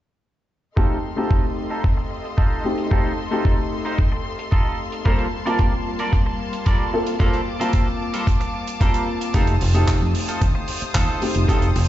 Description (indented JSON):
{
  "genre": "nu-disco, nu disco",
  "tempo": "112 BPM",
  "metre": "4/4",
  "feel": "straight",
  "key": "unclear",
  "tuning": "A4 = 441 Hz",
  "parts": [
    { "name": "dark grand piano", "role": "accompaniment", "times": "0.8-11.7 s", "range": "A3 to A5", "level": "-26 LUFS", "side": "left 2 dB", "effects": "sidechain pumping, tape echo" },
    { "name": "rich studio string section", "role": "sustained chords", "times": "0.8-11.9 s", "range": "G3 to Eb6", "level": "-31 LUFS", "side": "left 2 dB", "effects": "sidechain pumping" },
    { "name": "clean electric guitar", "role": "riff", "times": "0.8-11.7 s", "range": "G3 to D5", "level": "-28 LUFS", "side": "right 3 dB", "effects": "analog chorus, low-pass filter, tape echo" },
    { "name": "electronic kick drum", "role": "drums", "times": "0.8-11.6 s", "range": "none", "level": "-19 LUFS", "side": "equal", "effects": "small room ambience" },
    { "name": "tight funk drum kit", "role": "drums", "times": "0.8-11.9 s", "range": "handclaps, hi-hat", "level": "-32 LUFS", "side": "right 3 dB", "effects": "low-pass filter on hats, small room ambience, low-pass filter on snare, low-pass filter on room" },
    { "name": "fingered electric bass", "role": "bass", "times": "9.3-11.9 s", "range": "F1 to F2", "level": "-20 LUFS", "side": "equal", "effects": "sidechain pumping" }
  ],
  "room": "small room ambience",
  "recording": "played on a big sound system in a bare room, stone room reverb, nothing above 7.8 kHz",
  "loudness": "-18 LUFS",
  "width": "side -13 dB against mid",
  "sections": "0.8-11.9 A section",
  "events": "filter sweep on drum 0.8-11.9; filter sweep on clean electric guitar 0.8-11.9",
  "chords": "0.8 F7; 5.1 Gm11; 9.3 F7"
}